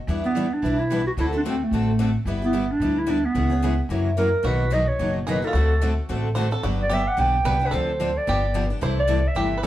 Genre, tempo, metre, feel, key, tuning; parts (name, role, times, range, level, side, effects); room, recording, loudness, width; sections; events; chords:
acoustic string swing (jazz manouche); 220 BPM; 4/4; swing 56% on 8ths; G major; A4 = 442 Hz
picked steel-string acoustic guitar; accompaniment; 0.1-9.7 s; B2 to A4; -30 LUFS; left 6 dB
picked steel-string acoustic guitar; accompaniment; 0.1-9.7 s; B2 to B4; -29 LUFS; right 1 dB
upright bass; bass; 0.1-9.7 s; F#1 to F#2; -24 LUFS; equal
mellow clarinet; melody; 0.3-9.7 s; A3 to G5; -24 LUFS; right 2 dB
bluegrass banjo; second line; 4.4-9.7 s; F4 to C5; -30 LUFS; right 2 dB
moderate studio reverb, RT60 0.7 s; heard from further back in the room; -20 LUFS; side -13 dB against mid
0.0-4.4 A section; 4.4-9.7 B section
0.1 Em7; 1.2 D7; 2.3 G6; 3.4 C#m7; 3.9 F#7; 4.4 Bmaj7; 5.5 D7; 6.6 Gmaj7; 7.7 Dm7; 8.3 G7; 8.8 C69